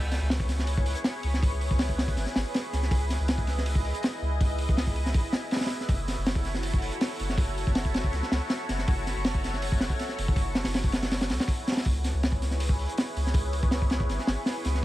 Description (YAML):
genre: drum and bass, jungle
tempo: 161 BPM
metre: 4/4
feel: straight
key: C# minor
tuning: A4 = 440 Hz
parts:
  - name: lush unison pad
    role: sustained chords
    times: 0.0-14.8 s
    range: E4 to D#5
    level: -34 LUFS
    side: equal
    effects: chorus, phaser
  - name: soft dub sub bass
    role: bass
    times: 0.0-14.8 s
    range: F#1 to C#2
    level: -29 LUFS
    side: equal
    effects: none
  - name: crunchy breakbeat drum kit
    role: drums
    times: 0.1-14.8 s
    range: hi-hat, kick drum, snare drum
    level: -27 LUFS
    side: equal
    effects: none
room: studio reverb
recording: vinyl crackle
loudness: -25 LUFS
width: side -16 dB against mid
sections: 0.0-14.8 A section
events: none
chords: 0.0 C#m7; 5.9 F#m7; 11.9 C#m7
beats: 0.30 0.68 1.05 | 1.42 1.79 2.17 2.54 | 2.91 3.29 3.66 4.03 | 4.40 4.78 5.15 5.52 | 5.89 6.27 6.64 7.01 | 7.38 7.76 8.13 8.50 | 8.88 9.25 9.62 9.99 | 10.37 10.74 11.11 11.48 | 11.86 12.23 12.60 12.97 | 13.35 13.72 14.09 14.46 | 14.84